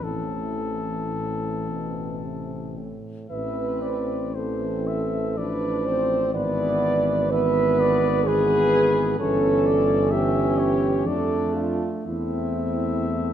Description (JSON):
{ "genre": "classical, hymn-like piece for brass band", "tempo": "53-65 BPM", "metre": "3/4", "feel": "rubato", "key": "A minor", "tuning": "A4 = 440 Hz", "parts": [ { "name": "mellow cornet", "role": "melody", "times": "0.0-13.3 s", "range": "A4 to E5", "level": "-31 LUFS", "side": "left 7 dB", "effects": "none" }, { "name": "warm French horn section", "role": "second line", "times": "0.0-13.3 s", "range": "C4 to D5", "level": "-24 LUFS", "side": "right 4 dB", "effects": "none" }, { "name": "bright trombone section", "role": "accompaniment", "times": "0.0-13.3 s", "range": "E3 to D4", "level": "-29 LUFS", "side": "left 4 dB", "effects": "none" }, { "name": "warm trombone", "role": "accompaniment", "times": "0.0-13.3 s", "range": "A2 to A3", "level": "-32 LUFS", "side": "right 2 dB", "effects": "none" }, { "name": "mellow tuba", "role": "bass", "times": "0.0-13.3 s", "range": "G1 to F2", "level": "-28 LUFS", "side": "left 1 dB", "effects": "none" } ], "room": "moderate concert hall reverb, RT60 1.8 s", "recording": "dark, warm production", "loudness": "-21 LUFS", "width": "side -10 dB against mid", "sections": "0.0-3.3 A section; 3.3-13.3 A section", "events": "none", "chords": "0.0 Am; 5.4 Bm7b5/A; 6.3 E7/G#; 9.2 A7/G; 11.1 Dm/F; 12.1 Am/E" }